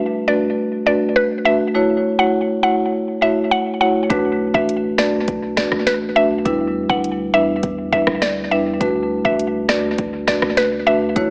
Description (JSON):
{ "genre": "dancehall", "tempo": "102 BPM", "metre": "4/4", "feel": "straight", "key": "B minor", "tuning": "A4 = 440 Hz", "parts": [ { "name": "mallet-like synth pluck", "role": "melody", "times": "0.0-11.0 s", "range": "B4 to F#5", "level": "-21 LUFS", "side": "equal", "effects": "chorus, tape echo" }, { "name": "marimba with medium mallets", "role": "accompaniment", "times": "0.3-11.3 s", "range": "G3 to C#5", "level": "-21 LUFS", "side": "equal", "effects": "tape echo" }, { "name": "sub bass with octave", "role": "bass", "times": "4.1-11.3 s", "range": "F#1 to E2", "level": "-39 LUFS", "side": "equal", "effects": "none" }, { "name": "afro-pop drum kit", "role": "drums", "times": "4.1-11.3 s", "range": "hi-hat, kick drum, rim click, snare drum", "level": "-25 LUFS", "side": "equal", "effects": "tape echo" } ], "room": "light reverb", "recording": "echo-heavy mix, AM radio sound", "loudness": "-18 LUFS", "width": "mono", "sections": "0.0-4.1 A section; 4.1-11.3 B section", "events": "none", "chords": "0.0 D6; 1.7 F#m7; 4.1 Bm7; 6.5 Em7; 8.8 D6" }